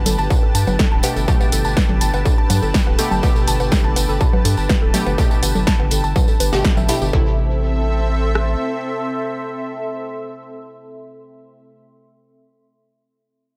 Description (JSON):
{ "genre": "melodic techno", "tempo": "123 BPM", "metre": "4/4", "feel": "straight", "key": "A minor", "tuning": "A4 = 440 Hz", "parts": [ { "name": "lush unison pad", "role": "sustained chords", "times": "0.0-11.7 s", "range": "C4 to A5", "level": "-30 LUFS", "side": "equal", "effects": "chorus, phaser, sidechain pumping" }, { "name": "synth brass stab", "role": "stabs", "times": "0.0-11.7 s", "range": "B2 to G4", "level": "-30 LUFS", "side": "equal", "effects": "chorus, phaser, cassette tape, sidechain pumping, delay" }, { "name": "round analog bass", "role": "bass", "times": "0.0-8.6 s", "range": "D1 to G2", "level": "-22 LUFS", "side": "equal", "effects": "sidechain pumping" }, { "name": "warbly tape-like pad", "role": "texture", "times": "0.0-11.8 s", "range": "C4 to C6", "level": "-31 LUFS", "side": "equal", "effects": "chorus, built-in reverb, sidechain pumping" }, { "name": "woody wave-folded pluck", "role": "arpeggios", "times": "0.1-7.4 s", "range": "E4 to A5", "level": "-28 LUFS", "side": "equal", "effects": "chorus, sidechain pumping, delay" }, { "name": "punchy analog drum machine", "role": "drums", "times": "0.1-7.0 s", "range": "congas, hi-hat, snare drum, woodblock", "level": "-25 LUFS", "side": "equal", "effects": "overdrive" }, { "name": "tambourine", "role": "percussion", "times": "0.1-7.1 s", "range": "none", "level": "-32 LUFS", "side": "equal", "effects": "none" }, { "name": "techno drum kit", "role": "drums", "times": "0.3-8.5 s", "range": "kick drum, rim click", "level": "-19 LUFS", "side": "equal", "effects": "distortion" } ], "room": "light reverb", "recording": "none", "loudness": "-18 LUFS", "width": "mono", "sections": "0.0-7.1 A section; 7.1-11.0 B section", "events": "drop 0.0-7.1", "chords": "0.0 Gadd9; 7.1 Am", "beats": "0.30 0.79 | 1.28 1.77 2.26 2.74 | 3.23 3.72 4.21 4.70 | 5.18 5.67 6.16 6.65 | 7.13 7.62 8.11 8.60 | 9.09 9.57 10.06 10.55" }